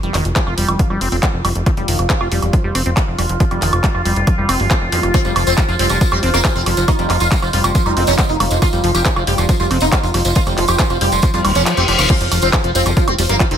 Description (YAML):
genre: psychedelic trance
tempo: 138 BPM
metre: 4/4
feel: straight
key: unclear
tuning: A4 = 440 Hz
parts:
  - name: overtone-sweeping drone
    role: sustained chords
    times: 0.1-13.6 s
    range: F4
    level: -23 LUFS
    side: right 2 dB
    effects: chorus, built-in reverb, sidechain pumping
  - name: liquid acid bass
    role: riff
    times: 0.0-13.6 s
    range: Eb3 to G4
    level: -23 LUFS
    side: moving between left 3 dB and right 5 dB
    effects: phaser, auto-pan, cassette tape, sidechain pumping, dub echo
  - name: plucky analog bass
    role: bass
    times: 0.0-13.6 s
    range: Eb1 to F2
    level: -19 LUFS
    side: equal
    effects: none
  - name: big-room dance drum kit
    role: drums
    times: 0.0-13.6 s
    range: crash cymbal, handclaps, hi-hat, woodblock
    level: -21 LUFS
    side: right 1 dB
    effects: studio reverb
  - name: electronic kick drum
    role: drums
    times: 0.4-13.5 s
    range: none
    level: -16 LUFS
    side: equal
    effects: studio reverb
  - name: zap and reverse cymbal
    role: sound effects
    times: 4.9-5.0, 8.0-8.1, 11.4-12.1 s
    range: none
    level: -22 LUFS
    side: left 3 dB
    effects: none
  - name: sitar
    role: melody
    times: 5.1-13.6 s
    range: F3 to G4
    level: -20 LUFS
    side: equal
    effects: phaser, sidechain pumping, dub echo
  - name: tambourine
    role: percussion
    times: 5.1-13.5 s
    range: none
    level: -26 LUFS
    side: right 3 dB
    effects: none
  - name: vowel-sweep wobble bass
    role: second line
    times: 12.8-12.9 s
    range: C4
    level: -29 LUFS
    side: left 7 dB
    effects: none
room: light reverb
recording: none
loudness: -13 LUFS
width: side -9 dB against mid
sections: 0.0-12.1 A section; 12.1-13.6 B section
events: reverse cymbal 11.4-12.1; kick drops out 11.7-12.1; drop 12.1-13.6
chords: 0.0 F5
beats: 0.36 0.79 1.23 | 1.66 2.10 2.53 2.97 | 3.40 3.84 4.27 4.71 | 5.14 5.58 6.01 6.45 | 6.88 7.32 7.75 8.19 | 8.62 9.05 9.49 9.92 | 10.36 10.79 11.23 11.66 | 12.10 12.53 12.97 13.40